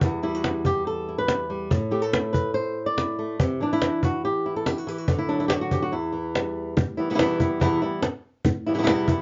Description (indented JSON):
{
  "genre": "flamenco",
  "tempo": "142 BPM",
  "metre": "4/4",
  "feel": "straight",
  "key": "E minor",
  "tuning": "A4 = 441 Hz",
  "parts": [
    { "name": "flamenco guitar", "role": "melody", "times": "0.0-9.2 s", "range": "E2 to D5", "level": "-26 LUFS", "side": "equal", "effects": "none" },
    { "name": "cajon", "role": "percussion", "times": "0.0-9.2 s", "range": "none", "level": "-27 LUFS", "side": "equal", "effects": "none" }
  ],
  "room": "light reverb",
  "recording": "dark, warm production, nothing above 7.5 kHz",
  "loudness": "-25 LUFS",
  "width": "mono",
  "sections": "0.0-6.8 A section; 6.8-9.2 B section",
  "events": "none",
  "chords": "0.0 Em; 1.7 A5; 3.4 C (rootless); 5.1 D; 5.9 Em",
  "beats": "| 0.03 0.45 0.87 1.29 | 1.71 2.13 2.56 2.98 | 3.40 3.82 4.24 4.66 | 5.08 5.51 5.93 6.35 | 6.77 7.19 7.62 8.04 | 8.46 8.88"
}